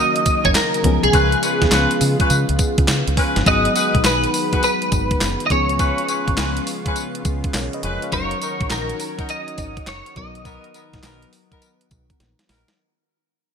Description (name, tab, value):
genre	R&B, new jack swing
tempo	103 BPM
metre	4/4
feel	swing 66% on 16ths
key	unclear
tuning	A4 = 439 Hz
part	clean electric guitar	melody	0.0-12.2 s	G#4 to D#5	-21 LUFS	right 1 dB	ensemble chorus, digital delay
part	mellow FM electric piano	accompaniment	0.0-12.8 s	D#3 to E#5	-27 LUFS	left 4 dB	chorus
part	lush unison pad	sustained chords	0.0-12.8 s	C#3 to A#4	-28 LUFS	equal	chorus
part	warm horn section	stabs	0.0-12.7 s	B3 to B4	-25 LUFS	left 2 dB	none
part	crisp 8-bit digital drum machine	drums	0.2-12.8 s	handclaps, hi-hat, kick drum, snare drum, tambourine	-21 LUFS	equal	none
part	deep dub fingered electric bass	bass	0.3-12.6 s	E#1 to C#3	-22 LUFS	equal	none
room	light reverb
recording	bright 1980s-style digital production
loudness	-16 LUFS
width	side -7 dB against mid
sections	0.0-3.5 A section; 3.5-12.8 B section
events	fade-out 3.5-12.8; drum fill 12.2-12.8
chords	0.0 F#6; 0.8 C#7; 3.5 G#m7; 5.5 C#7; 8.1 F#6; 10.2 Bmaj7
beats	0.55 | 1.13 1.72 2.30 2.88 | 3.46 4.05 4.63 5.21 | 5.79 6.38 6.96 7.54 | 8.12 8.71 9.29 9.87 | 10.45 11.04 11.62 12.20